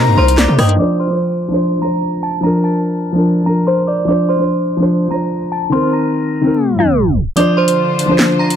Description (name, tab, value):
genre	hip hop, drill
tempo	146 BPM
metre	4/4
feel	half-time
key	D phrygian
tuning	A4 = 440 Hz
part	metallic FM bell	melody	0.0-8.6 s	C5 to Bb6	-19 LUFS	right 1 dB	chorus, phaser, low-pass filter, digital delay
part	breathy mellow silver concert flute	second line	0.0-0.8 s	G5 to Bb5	-21 LUFS	left 8 dB	digital delay
part	dark concert grand piano	accompaniment	0.0-8.6 s	Eb3 to C5	-14 LUFS	equal	low-pass filter
part	rich symphonic string section	sustained chords	0.0-0.8, 7.4-8.6 s	C3 to C5	-22 LUFS	equal	none
part	distorted 808-style bass	bass	0.0-0.8 s	C2 to C3	-12 LUFS	equal	distortion
part	drill drum kit	drums	0.3-0.9, 7.4-8.6 s	handclaps, hi-hat, rim click, snare drum	-16 LUFS	equal	none
room	light reverb, small room ambience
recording	dark, warm production, low-pass filter, tape stop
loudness	-12 LUFS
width	side -9 dB against mid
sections	0.8-7.4 A section; 7.4-8.6 B section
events	filter sweep 0.8-7.4; tape stop 6.5-7.4; kick muted 7.4-8.6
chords	0.0 Cm7; 0.8 Dm7; 5.7 Cm7; 7.4 Dm7